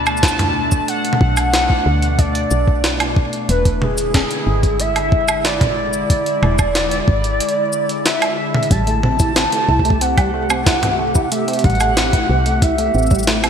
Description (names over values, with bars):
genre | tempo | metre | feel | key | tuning
IDM | 92 BPM | 4/4 | straight | A dorian | A4 = 438 Hz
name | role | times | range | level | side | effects
warbly nostalgic lead | melody | 0.0-13.5 s | G#4 to A5 | -19 LUFS | equal | wide subtle chorus, ping-pong delay
warbly tape-like pad | sustained chords | 0.0-13.5 s | B2 to G4 | -24 LUFS | equal | chorus, built-in reverb
woody FM bass | bass | 0.0-13.5 s | E1 to D2 | -21 LUFS | equal | none
jungle sampler-style drum kit | drums | 0.1-13.5 s | cabasa, hi-hat, snare drum, toms, woodblock | -20 LUFS | right 1 dB | overdrive, small room reverb, gated reverb
electronic kick drum | drums | 0.2-13.2 s | none | -15 LUFS | equal | overdrive, small room reverb
deep acid bass | arpeggios | 8.7-13.5 s | G3 to E4 | -22 LUFS | right 2 dB | analog chorus, digital delay
room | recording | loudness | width
moderate lush hall reverb, RT60 2.6 s | bright 1980s-style digital production, faint mains hum | -14 LUFS | side -8 dB against mid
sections
0.0-13.5 A section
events
none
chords
0.0 Bm7; 3.5 E7; 8.7 Am7